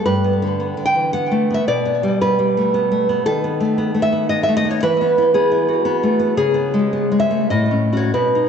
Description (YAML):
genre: romantic piece for solo classical guitar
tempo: 92-119 BPM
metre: 3/4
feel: rubato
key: E major from 3.3 s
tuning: A4 = 437 Hz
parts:
  - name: nylon-string guitar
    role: solo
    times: 0.0-8.5 s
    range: G2 to G5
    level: -15 LUFS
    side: equal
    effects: ping-pong delay
room: wet plate reverb, RT60 2.8 s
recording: dreamy mix soaked in reverb, nothing above 8.0 kHz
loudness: -15 LUFS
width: side -7 dB against mid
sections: 0.0-8.5 A section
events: none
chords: 0.1 G; 1.7 G/B; 3.3 B7/D#; 4.8 E; 6.4 C#5; 7.5 F#m/A